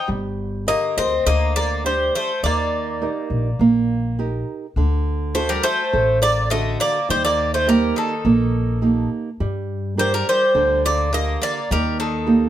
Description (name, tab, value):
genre	greek folk, Greek bouzouki band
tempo	103 BPM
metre	4/4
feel	straight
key	unclear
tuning	A4 = 440 Hz
part	Greek bouzouki	melody	0.0-12.5 s	A4 to Eb5	-20 LUFS	equal	plate reverb
part	Greek bouzouki	second line	0.0-12.5 s	Eb3 to C4	-27 LUFS	left 3 dB	slapback echo
part	nylon-string guitar	accompaniment	0.1-12.5 s	D3 to D5	-23 LUFS	right 4 dB	none
part	upright bass	bass	0.1-12.5 s	G1 to G2	-23 LUFS	left 1 dB	none
room	moderate small room reverb, RT60 0.5 s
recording	none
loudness	-18 LUFS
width	side -11 dB against mid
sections	0.0-4.8 A section; 4.8-12.5 B section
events	none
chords	0.1 Gm; 2.4 Eb; 4.8 D; 7.1 Eb; 9.4 Gm; 11.7 Eb